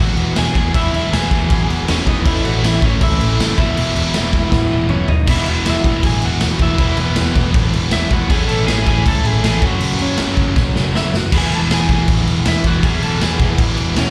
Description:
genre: punk rock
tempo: 159 BPM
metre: 4/4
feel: straight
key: E major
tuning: A4 = 440 Hz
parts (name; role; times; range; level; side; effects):
- lightly driven lead guitar; melody; 0.0-14.1 s; B3 to A5; -26 LUFS; equal; tape echo
- cranked stack guitar; riff; 0.0-14.1 s; E2 to A3; -25 LUFS; equal; overdrive, slapback echo
- crunchy overdriven guitar; riff; 0.0-14.1 s; E2 to A3; -29 LUFS; equal; none
- distorted electric guitar; riff; 0.0-14.1 s; A2 to F#4; -29 LUFS; equal; overdrive
- overdriven picked electric bass; bass; 0.0-14.1 s; E1 to C#2; -22 LUFS; equal; none
- raw garage drum kit; drums; 0.2-14.1 s; crash cymbal, kick drum, snare drum, toms; -19 LUFS; equal; none
room: little or no reverb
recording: live gig heard through the venue's PA, recital hall reverb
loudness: -16 LUFS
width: mono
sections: 0.0-5.3 A section; 5.3-14.1 A section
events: drum fill 4.5-5.3, 10.6-11.3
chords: 0.0 E; 2.3 A; 3.6 E; 8.3 A; 9.6 F#; 11.3 E

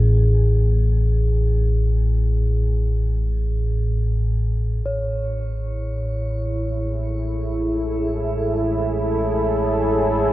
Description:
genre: dark ambient drone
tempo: free time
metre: none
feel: none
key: A major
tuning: A4 = 440 Hz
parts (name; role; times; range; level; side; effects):
- deep rumbling drone; drone; 0.0-10.3 s; A1 to A2; -20 LUFS; equal; built-in reverb
- bronze singing bowl; texture; 0.0-10.3 s; G#4 to C#5; -31 LUFS; right 1 dB; shimmer reverb
- deep dark ambient pad; sustained chords; 6.4-10.3 s; E4 to C#5; -21 LUFS; equal; chorus, built-in reverb, shimmer reverb
room: wet cathedral reverb, RT60 6.2 s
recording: worn, warbling old tape, cassette tape, warbly pitch drift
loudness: -19 LUFS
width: side -16 dB against mid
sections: 0.0-4.8 A section; 4.8-10.3 B section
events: none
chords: 0.0 N.C.; 4.8 A

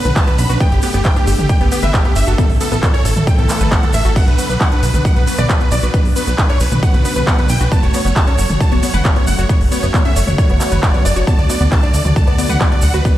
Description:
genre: uplifting trance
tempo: 135 BPM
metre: 4/4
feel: straight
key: B minor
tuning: A4 = 442 Hz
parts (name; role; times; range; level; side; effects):
- supersaw chords; melody; 0.0-13.1 s; G4 to B5; -22 LUFS; right 1 dB; sidechain pumping, tape echo
- bright baby grand piano; second line; 0.0-13.1 s; G4 to B5; -27 LUFS; left 1 dB; sidechain pumping, tape echo
- analog string pad; sustained chords; 0.0-13.2 s; C#3 to G4; -24 LUFS; right 1 dB; ensemble chorus, sidechain pumping
- tube shaker; percussion; 0.0-13.1 s; none; -29 LUFS; right 2 dB; none
- tight sequenced synth; arpeggios; 0.1-13.1 s; B3 to B4; -25 LUFS; left 3 dB; chorus, phaser, sidechain pumping, tape echo
- plucky analog bass; bass; 0.1-13.0 s; F#1 to D2; -16 LUFS; equal; sidechain pumping
- big-room dance drum kit; drums; 0.1-13.1 s; crash cymbal, handclaps, hi-hat, ride cymbal, toms; -22 LUFS; equal; overdrive, studio reverb
- electronic kick drum; drums; 0.2-13.1 s; none; -14 LUFS; equal; overdrive, studio reverb
room: little or no reverb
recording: played on a big sound system in a bare room, stone room reverb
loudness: -12 LUFS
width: side -13 dB against mid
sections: 0.0-13.2 A section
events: none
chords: 0.0 Bmadd9; 0.6 Gadd9; 2.4 A; 4.2 Bmadd9; 7.7 F#m; 11.3 D

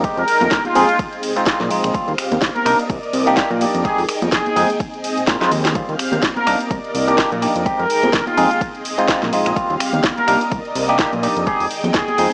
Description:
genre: filtered disco house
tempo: 126 BPM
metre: 4/4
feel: swing 57% on 16ths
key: F dorian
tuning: A4 = 442 Hz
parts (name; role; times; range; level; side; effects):
- barky tine electric piano; accompaniment; 0.0-12.3 s; G3 to Bb4; -18 LUFS; equal; phaser, sidechain pumping
- string machine, full ensemble; sustained chords; 0.0-12.3 s; C4 to G5; -23 LUFS; equal; ensemble chorus, sidechain pumping
- fat analog bass; bass; 0.0-12.3 s; Eb1 to Bb2; -22 LUFS; equal; sidechain pumping
- electronic kick drum; drums; 0.0-12.1 s; none; -24 LUFS; equal; overdrive, studio reverb
- house drum kit; drums; 0.0-12.3 s; finger snaps, hi-hat, ride cymbal, snare drum; -22 LUFS; equal; overdrive, studio reverb
- egg shaker and congas; percussion; 0.0-12.2 s; none; -28 LUFS; equal; sidechain pumping on perc
- warm trumpet section; melody; 0.2-12.3 s; F4 to Bb4; -20 LUFS; equal; vintage 12-bit sampler grit, sidechain pumping, tape echo
room: light reverb, digital ambience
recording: dry, gritty hardware recording, small speaker sound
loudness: -15 LUFS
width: side -38 dB against mid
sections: 0.0-12.3 A section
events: drum fill 5.4-5.8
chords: 0.0 Fm9; 1.0 Bb9sus4; 1.9 Eb69; 2.7 Cm9; 3.8 Fm9; 4.8 Bb9sus4; 5.8 Eb69; 6.5 Cm9; 7.7 Fm9; 8.6 Bb9sus4; 9.6 Eb69; 10.3 Cm9; 11.5 Fm9

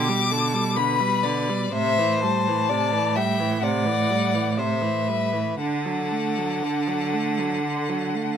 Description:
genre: classical, slow romantic movement for string quartet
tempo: 58-66 BPM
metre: 4/4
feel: rubato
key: unclear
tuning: A4 = 440 Hz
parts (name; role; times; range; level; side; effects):
- clear violin; melody; 0.0-8.4 s; D5 to D6; -26 LUFS; left 9 dB; none
- rich violin; second line; 0.0-8.4 s; G4 to E5; -28 LUFS; left 2 dB; none
- clear viola; accompaniment; 0.0-8.4 s; C3 to A3; -28 LUFS; right 5 dB; none
- rich cello; bass; 0.0-8.4 s; A2 to D3; -26 LUFS; right 4 dB; none
room: light reverb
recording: close, detailed microphones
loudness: -21 LUFS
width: side -8 dB against mid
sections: 0.0-8.4 A section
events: none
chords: 0.0 G/B; 1.7 Am7; 5.6 D

